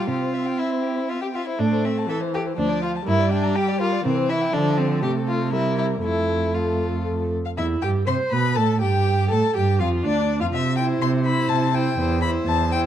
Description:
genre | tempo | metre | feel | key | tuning
quick classical-period movement for string quartet | 122 BPM | 3/4 | straight | F major, C major from 7.6 s | A4 = 440 Hz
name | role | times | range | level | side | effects
rich violin | melody | 0.0-12.8 s | G4 to C6 | -27 LUFS | left 6 dB | none
rich violin | second line | 0.0-12.9 s | C4 to C5 | -26 LUFS | left 2 dB | none
rich viola | accompaniment | 0.0-12.9 s | E3 to C5 | -26 LUFS | right 2 dB | none
rich cello | bass | 0.1-12.9 s | D2 to D3 | -23 LUFS | right 3 dB | none
room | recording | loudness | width
moderate stone room reverb, RT60 1.4 s | dark, warm production | -20 LUFS | side -10 dB against mid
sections
0.0-7.6 A section; 7.6-12.9 B section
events
none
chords
0.1 C; 1.6 Am; 2.6 Dm7; 3.1 Gm; 4.1 C7; 4.5 Dm; 5.0 F/C; 5.5 C7; 6.0 F; 7.6 C/E; 9.1 G5; 10.5 C; 12.0 C/E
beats
| 0.08 0.58 1.08 | 1.59 2.09 2.58 | 3.07 3.56 4.05 | 4.54 5.03 5.53 | 6.04 6.55 7.07 | 7.58 8.08 8.57 | 9.07 9.55 10.04 | 10.53 11.02 11.50 | 11.99 12.47

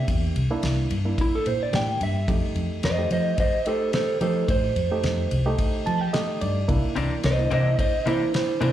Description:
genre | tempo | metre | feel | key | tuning
straight-eighth soul blues | 109 BPM | 4/4 | swing 55% on 16ths | unclear | A4 = 439 Hz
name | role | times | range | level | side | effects
electric slide guitar | melody | 0.0-8.7 s | E4 to G5 | -26 LUFS | right 1 dB | slapback echo
reed electric piano | accompaniment | 0.0-8.7 s | A3 to A5 | -29 LUFS | right 3 dB | spring reverb, slapback echo
vintage muted fingered electric bass | bass | 0.0-8.7 s | C2 to F3 | -24 LUFS | equal | none
damped 70s drum kit | drums | 0.1-8.7 s | kick drum, ride cymbal, snare drum | -28 LUFS | equal | none
direct-recorded clean electric guitar | stabs | 7.0-8.7 s | C3 to D4 | -29 LUFS | left 5 dB | slapback echo
room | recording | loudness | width
light reverb, small room ambience | live gig heard through the venue's PA, club reverb | -21 LUFS | side -12 dB against mid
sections
0.0-8.7 A section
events
electric slide guitar solo 0.0-8.7; reed electric piano fill 5.6-6.7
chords
0.0 C9; 2.3 F9; 6.7 C9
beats
| 0.08 0.63 1.18 1.73 | 2.28 2.83 3.38 3.93 | 4.49 5.04 5.59 6.14 | 6.69 7.24 7.79 8.34

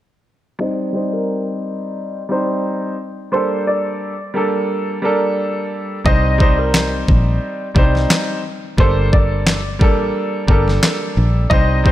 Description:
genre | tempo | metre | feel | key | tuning
hip hop, boom-bap hip-hop | 88 BPM | 4/4 | swing 55% on 16ths | C dorian | A4 = 438 Hz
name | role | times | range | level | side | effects
warm upright piano | melody | 0.6-11.9 s | Bb4 to Eb5 | -22 LUFS | right 1 dB | high-pass filter, low-pass filter, ping-pong delay
warm concert grand piano | accompaniment | 0.6-11.9 s | G3 to C5 | -20 LUFS | equal | high-pass filter, low-pass filter
fingered electric bass | bass | 6.1-11.9 s | G1 to C2 | -17 LUFS | equal | none
boom bap sampler-style drum kit | drums | 6.1-11.9 s | handclaps, kick drum, snare drum | -16 LUFS | equal | none
finger snaps | percussion | 6.7-11.0 s | none | -30 LUFS | equal | none
room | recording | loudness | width
light reverb, studio ambience | none | -15 LUFS | side -13 dB against mid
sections
0.6-6.1 A section; 6.1-11.9 B section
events
filter sweep 0.6-6.1; hi-hats muted 6.1-11.9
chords
0.6 Cm; 3.3 Gmadd9; 6.1 Cm; 8.8 Gmadd9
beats
| 0.60 1.28 1.97 2.65 | 3.33 4.01 4.69 5.37 | 6.06 6.74 7.42 8.10 | 8.78 9.46 10.15 10.83 | 11.51

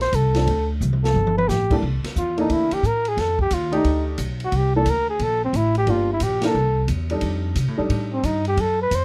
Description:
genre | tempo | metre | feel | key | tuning
jazz, small-group swing and bop | 178 BPM | 4/4 | swing 64% on 8ths | unclear | A4 = 440 Hz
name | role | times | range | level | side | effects
warm flugelhorn | melody | 0.0-9.0 s | C4 to C5 | -24 LUFS | equal | none
upright bass | bass | 0.0-9.0 s | G1 to C3 | -25 LUFS | equal | none
open jazz drum kit | drums | 0.0-9.0 s | crash cymbal, hi-hat, kick drum, ride cymbal, snare drum, toms | -32 LUFS | equal | none
warm upright piano | accompaniment | 0.4-8.2 s | C2 to D5 | -26 LUFS | equal | none
room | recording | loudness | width
little or no reverb | none | -21 LUFS | mono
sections
0.0-1.8 A section; 1.8-9.0 A section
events
drum fill 0.8-1.5; band accent 6.4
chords
0.5 Amadd11; 1.2 Gsus2; 1.8 C13; 3.2 F13; 4.5 C7sus2; 5.9 Gm7; 6.6 C69; 7.2 F13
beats
0.14 | 0.47 0.81 1.15 1.49 | 1.83 2.16 2.50 2.84 | 3.18 3.52 3.85 4.19 | 4.53 4.87 5.20 5.54 | 5.88 6.22 6.55 6.89 | 7.23 7.57 7.90 8.24 | 8.58 8.92

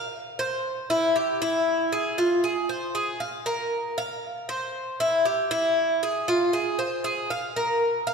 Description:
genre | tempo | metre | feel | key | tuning
latin | 117 BPM | 4/4 | straight | F harmonic minor | A4 = 440 Hz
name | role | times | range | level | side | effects
Cuban tres | solo | 0.0-8.1 s | E4 to F5 | -23 LUFS | equal | none
room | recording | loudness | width
wet concert hall reverb, RT60 2.5 s | recorded in a church or concert hall | -23 LUFS | side -5 dB against mid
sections
0.0-8.1 A section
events
none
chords
none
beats
| 0.13 0.64 1.16 1.67 | 2.18 2.69 3.21 3.72 | 4.23 4.74 5.26 5.77 | 6.28 6.79 7.30 7.82

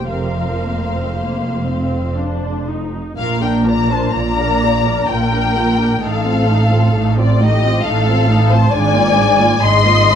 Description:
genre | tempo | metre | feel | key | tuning
classical, slow romantic movement for string orchestra | 55-70 BPM | 3/4 | rubato | Bb major | A4 = 438 Hz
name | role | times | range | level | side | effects
muted symphonic violin section | melody | 0.0-10.2 s | D5 to C6 | -18 LUFS | left 5 dB | none
muted studio violin section | second line | 0.0-10.2 s | F4 to Eb5 | -22 LUFS | left 3 dB | none
muted symphonic viola section | accompaniment | 0.0-10.2 s | C3 to Bb4 | -22 LUFS | equal | none
muted symphonic cello section | bass | 0.0-10.2 s | F2 to Bb2 | -19 LUFS | right 2 dB | none
muted symphonic double bass section | bass | 0.0-10.2 s | F1 to Bb1 | -19 LUFS | right 2 dB | none
room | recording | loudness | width
light reverb | dark, warm production | -13 LUFS | side -8 dB against mid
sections
0.0-3.2 A section; 3.2-10.2 B section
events
none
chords
0.1 Fsus4; 2.2 F5; 3.2 Bb; 6.0 F7/A; 8.7 Bb7/Ab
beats
| 0.09 1.17 2.18 | 3.17 4.13 5.08 | 6.02 6.94 7.84 | 8.72 9.61

